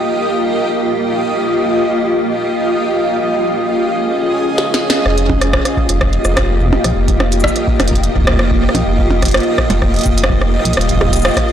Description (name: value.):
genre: IDM.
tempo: 126 BPM.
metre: 4/4.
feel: straight.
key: F minor.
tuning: A4 = 440 Hz.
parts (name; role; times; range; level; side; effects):
granular cloud pad; sustained chords; 0.0-11.5 s; Bb3 to Eb5; -15 LUFS; equal; built-in reverb, sidechain pumping.
glitchy drum kit; drums; 4.6-11.5 s; cabasa, hi-hat, percussion blips, rim click, snare drum; -17 LUFS; right 1 dB; soft clipping on snare, low-pass filter on snare, low-pass filter on hats, low-pass filter on perc, digital delay.
warm sub bass; bass; 5.1-11.3 s; Eb1 to Bb1; -16 LUFS; equal; tube saturation.
electronic kick drum; drums; 5.3-11.5 s; none; -18 LUFS; equal; none.
room: moderate plate reverb, RT60 1.7 s.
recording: blown-out, overdriven recording, overdrive.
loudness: -12 LUFS.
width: side -10 dB against mid.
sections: 0.0-5.1 A section; 5.1-11.5 B section.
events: drum fill 4.6-5.1.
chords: 0.0 F9sus4; 3.2 Eb9sus4; 5.1 F9sus4; 10.8 Eb9sus4.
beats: 0.29 0.77 | 1.25 1.72 2.20 2.67 | 3.15 3.63 4.10 4.58 | 5.06 5.53 6.01 6.49 | 6.96 7.44 7.91 8.39 | 8.87 9.34 9.82 10.29 | 10.77 11.25.